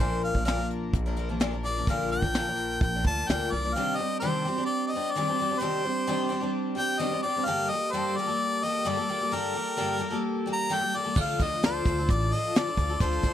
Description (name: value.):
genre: folk rock and heartland rock.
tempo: 129 BPM.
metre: 4/4.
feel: straight.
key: unclear.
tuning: A4 = 437 Hz.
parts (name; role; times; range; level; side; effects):
bright harmonica; melody; 0.0-13.3 s; Bb4 to Bb5; -29 LUFS; left 1 dB; none.
picked twelve-string acoustic guitar; accompaniment; 0.0-13.3 s; G2 to Bb4; -30 LUFS; left 2 dB; none.
upright bass; bass; 0.0-3.7, 11.2-13.3 s; A1 to D2; -31 LUFS; right 1 dB; none.
soft brush drum kit; drums; 0.2-3.6, 11.2-13.3 s; crash cymbal, hi-hat, kick drum, snare drum; -26 LUFS; equal; none.
room: small room ambience.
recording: dry, close 1970s-style studio recording.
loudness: -25 LUFS.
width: side -10 dB against mid.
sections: 0.0-3.8 A section; 3.8-13.3 B section.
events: harmonica solo 0.0-3.8.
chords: 0.0 Bb; 3.8 Cmadd9; 7.5 Gmadd9; 11.2 Dm.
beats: | 0.01 0.48 0.95 1.42 | 1.88 2.35 2.82 3.28 | 3.75 4.22 4.68 5.14 | 5.61 6.07 6.54 7.00 | 7.46 7.93 8.39 8.85 | 9.32 9.78 10.24 10.71 | 11.17 11.63 12.09 12.55 | 13.02.